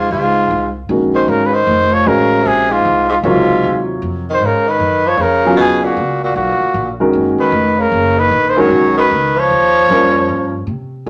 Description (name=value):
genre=jazz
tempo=153 BPM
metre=4/4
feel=swing 65% on 8ths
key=unclear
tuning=A4 = 440 Hz
part: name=breathy trumpet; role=melody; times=0.0-10.7 s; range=F4 to Db5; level=-17 LUFS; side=equal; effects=none
part: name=growling tenor saxophone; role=second line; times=0.0-10.7 s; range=Ab2 to Gb3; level=-20 LUFS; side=equal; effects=none
part: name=upright bass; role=bass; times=0.0-11.1 s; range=F1 to C3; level=-24 LUFS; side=equal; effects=none
part: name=dark grand piano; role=accompaniment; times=0.9-11.1 s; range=C3 to Eb5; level=-17 LUFS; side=equal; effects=none
room=wet studio reverb, RT60 0.7 s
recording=none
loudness=-14 LUFS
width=mono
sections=0.0-11.1 A section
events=none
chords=0.0 Dbmaj9; 4.8 Cbmaj9; 9.5 Eb13